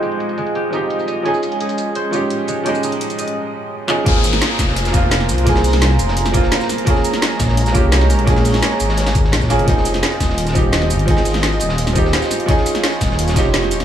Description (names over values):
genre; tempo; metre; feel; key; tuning
liquid drum and bass; 171 BPM; 4/4; straight; Ab major; A4 = 439 Hz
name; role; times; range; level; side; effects
bright baby grand piano; accompaniment; 0.0-13.8 s; F3 to G5; -19 LUFS; right 2 dB; dub echo
warm analog pad; sustained chords; 0.0-13.8 s; Ab3 to Bb5; -24 LUFS; right 1 dB; chorus, sidechain pumping
concert harp; arpeggios; 0.0-5.5 s; Ab3 to Eb5; -26 LUFS; equal; dub echo
drum and bass drum kit; drums; 0.0-13.8 s; handclaps, hi-hat, shaker, snare drum; -22 LUFS; equal; overdrive, small room ambience
dark detuned saw bass; bass; 4.1-13.8 s; Eb1 to C2; -18 LUFS; left 1 dB; none
crunchy breakbeat drum kit; drums; 4.1-13.8 s; hi-hat, snare drum; -28 LUFS; equal; high-pass filter on hats, small room ambience, high-pass filter on snare, high-pass filter on room
electronic kick drum; drums; 4.1-13.4 s; none; -17 LUFS; left 1 dB; overdrive, small room ambience
downlifter; sound effects; 4.1-6.9 s; none; -25 LUFS; left 3 dB; none
room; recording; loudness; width
light reverb; low-pass filter, studio ambience; -14 LUFS; side -10 dB against mid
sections
0.0-4.1 A section; 4.1-13.8 B section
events
filter sweep 0.0-4.1; drum fill 3.9; drop 4.1-13.8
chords
0.0 Fm7; 1.3 Eb9sus4; 4.1 Ab69; 6.9 Bbm7; 9.7 Fm7; 12.5 Eb9sus4